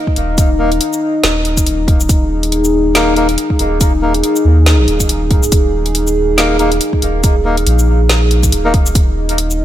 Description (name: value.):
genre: deep dubstep.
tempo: 140 BPM.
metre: 4/4.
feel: swing 58% on 16ths, half-time.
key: unclear.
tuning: A4 = 440 Hz.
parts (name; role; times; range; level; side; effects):
dark analog pad; sustained chords; 0.0-9.6 s; Eb4 to Eb5; -16 LUFS; left 1 dB; chorus.
electronic kick drum; drums; 0.1-9.1 s; none; -13 LUFS; equal; none.
soft dub sub bass; bass; 0.2-9.6 s; Eb1 to Eb2; -15 LUFS; equal; none.
deep house drum kit; drums; 0.2-9.6 s; hi-hat, shaker, snare drum; -17 LUFS; equal; none.
melodica; stabs; 0.6-8.7 s; Bb3 to Bb4; -20 LUFS; left 1 dB; dub echo.
room: light reverb.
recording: none.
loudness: -10 LUFS.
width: side -12 dB against mid.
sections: 0.0-9.6 A section.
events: none.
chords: 0.0 Eb5.